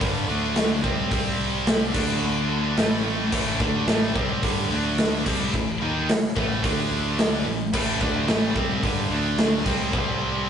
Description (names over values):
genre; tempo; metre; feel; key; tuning
hard rock; 109 BPM; 4/4; straight; A minor; A4 = 440 Hz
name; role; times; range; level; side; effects
heavy high-gain guitar; riff; 0.0-10.5 s; G2 to D#4; -31 LUFS; equal; distortion
scooped high-gain guitar; riff; 0.0-10.5 s; G2 to D#4; -29 LUFS; left 6 dB; distortion
tight distorted guitar; riff; 0.0-10.5 s; G2 to D#4; -29 LUFS; right 7 dB; distortion
modern bright picked electric bass; bass; 0.0-10.5 s; G1 to D#2; -29 LUFS; equal; none
big rock drum kit; drums; 0.0-10.1 s; crash cymbal, hi-hat, kick drum, snare drum; -24 LUFS; equal; none
room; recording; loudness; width
moderate studio ambience, RT60 0.5 s; rough rehearsal-room recording, nothing above 10.7 kHz; -21 LUFS; side -8 dB against mid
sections
0.0-10.5 A section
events
none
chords
0.3 D5; 0.8 C5; 1.9 D5; 2.8 Am; 4.7 D5; 5.3 Am; 6.6 D5; 7.5 Am; 9.1 D5; 9.7 C5